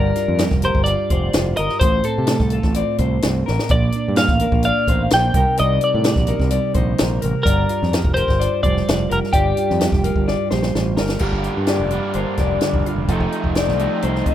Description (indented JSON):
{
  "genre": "math rock and midwest emo",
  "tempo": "128 BPM",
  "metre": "4/4",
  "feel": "straight",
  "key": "G minor",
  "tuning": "A4 = 440 Hz",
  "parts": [
    { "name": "twelve-string electric guitar", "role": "melody", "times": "0.0-10.7 s", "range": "G4 to G5", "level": "-21 LUFS", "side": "equal", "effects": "slapback echo" },
    { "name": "twelve-string electric guitar", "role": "accompaniment", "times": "0.0-14.3 s", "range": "G2 to Bb4", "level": "-24 LUFS", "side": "right 6 dB", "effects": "none" },
    { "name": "electric guitar through a small old amp", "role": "arpeggios", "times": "0.0-14.3 s", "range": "F4 to Eb5", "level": "-25 LUFS", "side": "left 11 dB", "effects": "none" },
    { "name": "growling fingered electric bass", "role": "bass", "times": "0.0-14.2 s", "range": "F1 to C3", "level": "-21 LUFS", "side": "equal", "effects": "overdrive" },
    { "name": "compact cocktail drum kit", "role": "drums", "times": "0.2-14.3 s", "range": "crash cymbal, hi-hat, kick drum, snare drum", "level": "-21 LUFS", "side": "equal", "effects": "none" },
    { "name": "crunchy overdriven guitar", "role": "riff", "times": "11.2-14.3 s", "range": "F2 to Eb4", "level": "-25 LUFS", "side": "right 1 dB", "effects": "none" }
  ],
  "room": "small room ambience",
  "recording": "rough home demo mix",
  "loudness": "-16 LUFS",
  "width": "side -11 dB against mid",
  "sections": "0.0-11.2 A section; 11.2-14.3 B section",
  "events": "drum fill 3.5, 10.3-11.2",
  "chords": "0.0 Gm7; 1.8 Dm7/A; 5.4 Cm9; 7.5 Gm7; 13.1 F7"
}